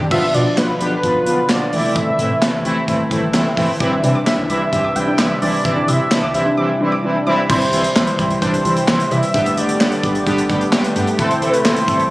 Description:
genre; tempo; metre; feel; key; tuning
synth-pop; 130 BPM; 4/4; straight; unclear; A4 = 441 Hz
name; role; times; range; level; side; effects
chorused pulse-width pad; sustained chords; 0.0-12.1 s; B2 to G4; -22 LUFS; equal; none
modern studio drum kit; drums; 0.0-12.1 s; crash cymbal, handclaps, hi-hat, kick drum, snare drum, toms; -21 LUFS; equal; none
wide unison lead; melody; 0.1-12.1 s; B4 to G5; -20 LUFS; equal; none
analog synth brass; accompaniment; 0.1-12.0 s; E3 to A4; -19 LUFS; equal; chorus
round analog bass; bass; 0.1-12.1 s; G1 to C3; -25 LUFS; equal; none
soft round pluck; arpeggios; 3.8-7.5 s; D4 to D6; -23 LUFS; left 1 dB; chorus, tape echo
room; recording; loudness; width
moderate lush hall reverb, RT60 2.4 s; recorded on a phone in the room, studio reverb; -14 LUFS; side -19 dB against mid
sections
0.1-7.5 A section; 7.5-12.1 B section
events
none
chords
0.1 Bdim; 1.7 Am7; 3.8 Cadd9; 9.3 Gadd9; 11.2 Am7

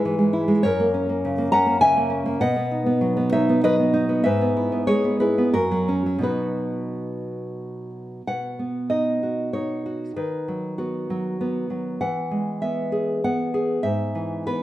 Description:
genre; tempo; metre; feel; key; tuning
romantic piece for solo classical guitar; 85-102 BPM; 3/4; rubato; B major; A4 = 440 Hz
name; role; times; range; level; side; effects
nylon-string guitar; solo; 0.0-14.6 s; F#2 to A#5; -20 LUFS; equal; none
room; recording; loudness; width
moderate recital hall reverb, RT60 1.5 s; none; -20 LUFS; side -14 dB against mid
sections
0.0-8.3 A section; 8.3-14.6 A section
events
none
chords
0.0 E/G#; 0.6 F#; 2.4 B; 4.2 E/G#; 5.5 F#; 6.2 B; 10.2 B/D#; 12.0 E; 13.9 E/G#

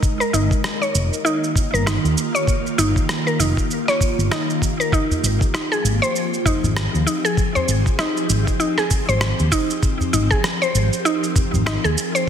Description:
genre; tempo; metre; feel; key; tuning
organic downtempo; 98 BPM; 4/4; swing 58% on 16ths; F minor; A4 = 440 Hz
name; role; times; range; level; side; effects
ethereal airy pad; sustained chords; 0.0-12.3 s; Eb3 to Eb5; -25 LUFS; equal; ensemble chorus, built-in reverb, phaser, sidechain pumping
mallet-like synth pluck; arpeggios; 0.0-12.3 s; Eb4 to Db5; -22 LUFS; equal; chorus, tape echo
electronic cabasa and rim click; drums; 0.0-12.3 s; none; -26 LUFS; right 2 dB; soft clipping on snare
electronic kick drum; drums; 0.0-11.5 s; none; -20 LUFS; equal; none
mellow fretless electric bass; bass; 0.3-11.9 s; F1 to Eb2; -19 LUFS; equal; none
udu; percussion; 5.1-11.6 s; none; -26 LUFS; right 1 dB; none
room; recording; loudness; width
light reverb, digital ambience; dense, heavily limited modern master; -17 LUFS; side -8 dB against mid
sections
0.0-12.3 A section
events
none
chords
0.0 Eb7; 4.9 Fm7/Ab

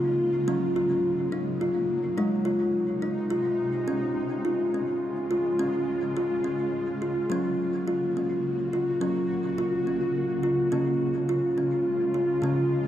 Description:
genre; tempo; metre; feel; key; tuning
world meditative, meditative tuned percussion; 106 BPM; 3/4; swing 54% on 16ths; Db major; A4 = 439 Hz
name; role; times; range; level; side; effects
granular cloud pad; sustained chords; 0.0-12.9 s; C3 to Gb4; -32 LUFS; left 1 dB; built-in reverb
kalimba; arpeggios; 0.0-12.9 s; Db3 to F4; -25 LUFS; equal; diffuse ambient delay
room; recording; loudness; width
wet echo chamber reverb, RT60 1.4 s, small room ambience; dark, warm production; -24 LUFS; side -11 dB against mid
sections
0.0-3.9 A section; 3.9-12.9 B section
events
none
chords
0.5 Gb; 2.2 Ab; 3.9 Db; 7.3 Gb; 10.7 Db

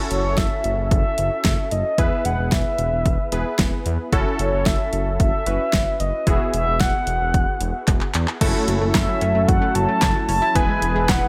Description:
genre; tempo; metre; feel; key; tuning
synth-pop; 112 BPM; 4/4; straight; F# minor; A4 = 442 Hz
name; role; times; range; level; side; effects
warm analog keys; accompaniment; 0.0-11.3 s; G#3 to B4; -29 LUFS; equal; chorus
mellow horn-like synth lead; melody; 0.1-11.3 s; C#5 to A5; -25 LUFS; equal; chorus, delay
smooth synth bass; bass; 0.1-11.2 s; E1 to E2; -26 LUFS; equal; none
deep house drum kit; drums; 0.1-11.2 s; crash cymbal, handclaps, hi-hat, kick drum, snare drum; -23 LUFS; equal; overdrive
warm analog pad; sustained chords; 8.4-11.3 s; E3 to B4; -30 LUFS; equal; chorus
analog pluck; arpeggios; 8.4-11.3 s; E3 to E4; -31 LUFS; equal; none
room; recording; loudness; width
light reverb, digital ambience; none; -20 LUFS; mono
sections
0.0-8.4 A section; 8.4-11.3 B section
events
drum fill 7.9-8.4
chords
0.0 F#m7; 2.0 E; 4.1 F#m7; 6.3 Eadd9; 8.4 F#m7; 10.6 E

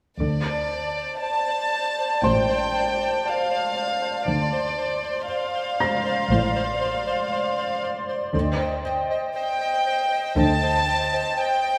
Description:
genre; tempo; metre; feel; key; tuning
cinematic, suspense film score; 59 BPM; 4/4; straight; D phrygian; A4 = 445 Hz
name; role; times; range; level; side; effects
warm chamber violin section; melody; 0.2-11.8 s; D5 to A5; -28 LUFS; equal; none
pulsing gated texture; sustained chords; 0.3-11.8 s; C5 to C6; -28 LUFS; equal; chorus, built-in reverb
dark studio double bass section; bass; 0.2-11.2 s; A1 to D2; -30 LUFS; equal; none
warm studio cello section; bass; 0.2-11.2 s; A2 to D3; -30 LUFS; equal; none
felt-muted upright piano; texture; 2.2-11.8 s; C5 to Bb6; -32 LUFS; equal; none
room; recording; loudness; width
wet scoring stage reverb, RT60 1.8 s; none; -24 LUFS; mono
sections
0.2-11.8 A section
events
none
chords
0.2 Dm7; 8.3 Cm/D

